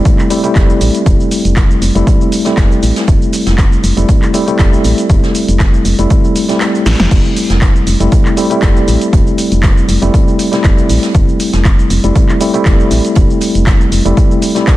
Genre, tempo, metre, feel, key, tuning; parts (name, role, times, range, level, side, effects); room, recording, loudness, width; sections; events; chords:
deep house; 119 BPM; 4/4; swing 54% on 16ths; F major; A4 = 440 Hz
tine electric piano; stabs; 0.0-14.8 s; G3 to E4; -14 LUFS; equal; medium stereo tremolo, sidechain pumping, tape echo
electronic kick drum; drums; 0.1-14.8 s; -11 LUFS; equal; studio reverb
jazz brush drum kit; drums; 0.1-14.8 s; hi-hat, snare drum; -27 LUFS; right 1 dB; high-pass filter on hats, studio reverb, soft clipping on snare, high-pass filter on snare, high-pass filter on room
punchy analog drum machine; drums; 0.1-14.8 s; crash cymbal, handclaps, hi-hat, shaker, snare drum; -20 LUFS; equal; studio reverb
woody FM bass; bass; 0.6-14.1 s; F1 to A1; -13 LUFS; equal; sidechain pumping
little or no reverb; dense, heavily limited modern master, vinyl crackle; -9 LUFS; side -16 dB against mid
0.0-14.8 A section
kick drops out 6.6-7.1; drum fill 6.9
0.0 Fmaj7